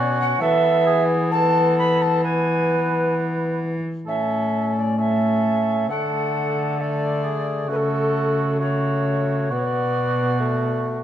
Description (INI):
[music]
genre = classical, renaissance-style consort dance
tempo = 66 BPM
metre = 4/4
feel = straight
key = A major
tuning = A4 = 440 Hz
[part]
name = mellow alto recorder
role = melody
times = 0.0-10.9 s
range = A4 to B5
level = -24 LUFS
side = right 2 dB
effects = none
[part]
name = mellow cor anglais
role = second line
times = 0.0-11.0 s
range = F#4 to B4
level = -27 LUFS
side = right 3 dB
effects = none
[part]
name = warm bassoon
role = accompaniment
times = 0.0-11.0 s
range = A3 to C#4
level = -24 LUFS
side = left 2 dB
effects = none
[part]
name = dark cello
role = bass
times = 0.0-11.0 s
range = A2 to E3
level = -23 LUFS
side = equal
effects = none
[sound]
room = wet stone room reverb, RT60 1.1 s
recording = none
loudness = -18 LUFS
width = side -10 dB against mid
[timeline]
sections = 0.0-4.1 A section; 4.1-11.0 B section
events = none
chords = 0.4 Esus4; 4.1 A; 5.9 D; 7.7 F#m/C#; 9.5 Bm